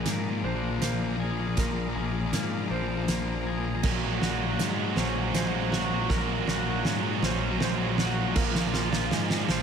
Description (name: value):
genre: post-rock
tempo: 80 BPM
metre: 3/4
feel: straight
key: unclear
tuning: A4 = 438 Hz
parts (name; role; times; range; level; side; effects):
- bright studio string section; sustained chords; 0.0-9.6 s; Db4 to Bb5; -38 LUFS; right 2 dB; none
- electric guitar through a small old amp; arpeggios; 0.0-9.6 s; Bb2 to Ab4; -35 LUFS; left 1 dB; lush chorus, diffuse ambient delay
- felt-muted upright piano; arpeggios; 0.0-9.6 s; Bb4 to C5; -39 LUFS; right 5 dB; diffuse ambient delay
- fuzz guitar; riff; 0.0-9.6 s; Bb2 to Gb3; -32 LUFS; left 10 dB; distortion
- growling picked electric bass; bass; 0.0-9.6 s; Bb1 to Ab2; -32 LUFS; right 1 dB; overdrive
- loose indie drum kit; drums; 0.1-9.6 s; crash cymbal, hi-hat, kick drum, snare drum; -30 LUFS; right 2 dB; none
- distorted electric guitar; riff; 3.8-9.6 s; Bb2 to Gb3; -31 LUFS; right 12 dB; overdrive
room: moderate lush hall reverb, RT60 2.6 s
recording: dreamy mix soaked in reverb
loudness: -25 LUFS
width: side -7 dB against mid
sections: 0.0-9.6 A section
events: build-up 0.0-9.6; drum fill 0.0-9.6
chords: 0.0 Bb7; 3.8 Gbadd9/Bb; 8.4 Bb7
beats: 0.06 0.82 | 1.57 2.33 3.09 | 3.84 4.60 5.35 | 6.10 6.86 7.61 | 8.36 9.12